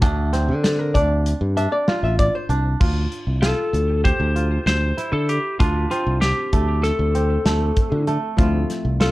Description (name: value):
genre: progressive instrumental, band music in an uneven meter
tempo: 194 BPM (eighths)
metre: 9/8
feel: straight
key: D minor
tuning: A4 = 439 Hz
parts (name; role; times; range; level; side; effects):
- kora; arpeggios; 0.0-9.1 s; A3 to G4; -27 LUFS; right 3 dB; none
- modern bright fingered electric bass; bass; 0.0-9.1 s; A1 to D3; -20 LUFS; equal; tube saturation
- modern studio drum kit; drums; 0.0-9.1 s; crash cymbal, hi-hat, kick drum, snare drum; -21 LUFS; equal; none
- hollow-body jazz guitar; accompaniment; 0.6-2.6, 8.4-9.1 s; F3 to E5; -23 LUFS; left 2 dB; none
- lightly driven lead guitar; melody; 3.4-9.1 s; F4 to C5; -24 LUFS; left 2 dB; plate reverb, tape echo
room: light reverb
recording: worn, warbling old tape, cassette tape, warbly pitch drift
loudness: -18 LUFS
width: side -18 dB against mid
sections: 0.0-2.8 A section; 2.8-9.1 B section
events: hollow-body jazz guitar solo 0.0-2.8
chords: 0.0 Dm7